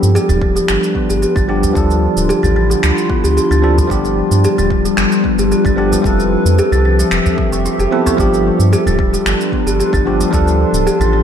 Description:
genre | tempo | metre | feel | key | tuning
organic downtempo | 112 BPM | 4/4 | straight | G mixolydian | A4 = 440 Hz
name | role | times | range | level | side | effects
bell-like tine electric piano | accompaniment | 0.0-11.2 s | F3 to A4 | -19 LUFS | equal | medium stereo tremolo, sidechain pumping, analog delay
warbly tape-like pad | sustained chords | 0.0-11.2 s | D3 to C6 | -19 LUFS | left 1 dB | chorus, built-in reverb, sidechain pumping
kalimba | arpeggios | 0.0-11.2 s | F3 to G4 | -17 LUFS | left 1 dB | analog delay
round analog bass | bass | 0.0-11.2 s | D1 to G2 | -16 LUFS | equal | sidechain pumping
electronic shaker and finger snaps | drums | 0.0-11.1 s | none | -23 LUFS | equal | none
udu | percussion | 0.3-11.1 s | none | -19 LUFS | right 1 dB | none
electronic kick drum | drums | 0.4-10.4 s | none | -19 LUFS | equal | none
room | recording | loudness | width
moderate lush hall reverb, RT60 1.9 s, digital ambience | dreamy mix soaked in reverb | -11 LUFS | side -8 dB against mid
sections
0.0-11.2 A section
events
none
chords
0.0 G7; 1.8 Dm7; 3.9 G7; 6.0 Fmaj7; 8.2 G7; 10.3 Dm7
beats
0.15 0.69 1.22 | 1.76 2.29 2.83 3.37 | 3.90 4.44 4.97 5.51 | 6.04 6.58 7.12 7.65 | 8.19 8.72 9.26 9.79 | 10.33 10.87

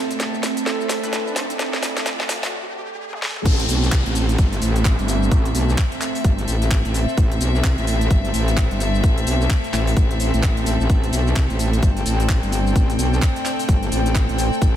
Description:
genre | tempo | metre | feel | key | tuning
bass house | 129 BPM | 4/4 | swing 60% on 16ths | A minor | A4 = 443 Hz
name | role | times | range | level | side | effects
deep dark ambient pad | sustained chords | 0.0-14.8 s | A3 to E5 | -28 LUFS | right 2 dB | chorus, built-in reverb, vintage 12-bit sampler grit, sidechain pumping
riser and downlifter | sound effects | 0.0-7.2 s | none | -31 LUFS | left 1 dB | none
clear chamber string section | texture | 0.0-14.8 s | C4 to G5 | -27 LUFS | left 2 dB | sidechain pumping
garage drum kit | drums | 0.1-14.7 s | crash cymbal, handclaps, hi-hat, shaker, snare drum, toms | -27 LUFS | equal | high-pass filter on snare, high-pass filter on hats, high-pass filter on perc, high-pass filter on toms, high-pass filter on cymbals, high-pass filter on room
band-passed chord stab | stabs | 0.7-1.4 s | A3 to B4 | -30 LUFS | right 3 dB | chorus, phaser, sidechain pumping, digital delay
metallic wobble bass | bass | 3.5-14.8 s | G1 to C2 | -20 LUFS | equal | chorus, tube saturation, sidechain pumping
electronic kick drum | drums | 3.5-14.7 s | none | -18 LUFS | equal | none
room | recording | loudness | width
little or no reverb | high-pass filter | -17 LUFS | side -11 dB against mid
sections
0.0-3.5 A section; 3.5-14.8 B section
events
build-up 0.0-3.5; drum fill 0.0-2.5, 3.1-3.5; riser 0.0-3.5; break 2.5-3.5; drop 3.5-14.8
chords
0.0 Am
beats
0.20 0.66 1.13 | 1.59 2.06 2.52 2.99 | 3.45 3.92 4.38 4.85 | 5.32 5.78 6.25 6.71 | 7.17 7.64 8.11 8.57 | 9.04 9.50 9.97 10.43 | 10.90 11.36 11.83 12.29 | 12.76 13.22 13.69 14.15 | 14.62

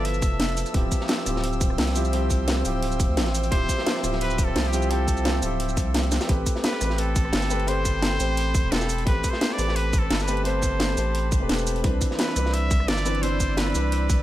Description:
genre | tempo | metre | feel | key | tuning
liquid drum and bass | 173 BPM | 4/4 | straight | A minor | A4 = 440 Hz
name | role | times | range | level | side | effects
trumpet with straight mute | melody | 0.0-0.6, 3.5-14.2 s | G4 to E5 | -31 LUFS | equal | digital delay
warm concert grand piano | accompaniment | 0.0-14.2 s | E3 to C5 | -29 LUFS | left 1 dB | none
airy breathy pad | sustained chords | 0.0-14.2 s | B4 to E6 | -34 LUFS | right 1 dB | chorus, sidechain pumping
saturated sub bass | bass | 0.0-14.2 s | D1 to D2 | -26 LUFS | equal | none
crunchy breakbeat drum kit | drums | 0.1-14.2 s | hi-hat, snare drum | -33 LUFS | equal | high-pass filter on hats, studio reverb, high-pass filter on snare, high-pass filter on room
garage drum kit | drums | 0.1-14.2 s | hi-hat, rim click, shaker, snare drum | -28 LUFS | equal | studio reverb
electronic kick drum | drums | 0.2-14.2 s | none | -24 LUFS | equal | studio reverb
room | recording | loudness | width
little or no reverb | none | -21 LUFS | side -14 dB against mid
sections
0.0-6.3 A section; 6.3-14.2 A section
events
drop 0.0-6.3, 6.3-14.2; drum fill 6.1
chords
0.0 G13; 0.7 Dm11; 6.3 Am9; 11.8 Cmaj9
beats
0.05 0.40 | 0.74 1.09 1.44 1.78 | 2.13 2.48 2.82 3.17 | 3.52 3.87 4.21 4.56 | 4.91 5.25 5.60 5.95 | 6.29 6.64 6.99 7.33 | 7.68 8.03 8.37 8.72 | 9.07 9.41 9.76 10.11 | 10.45 10.80 11.15 11.49 | 11.84 12.19 12.54 12.88 | 13.23 13.58 13.92

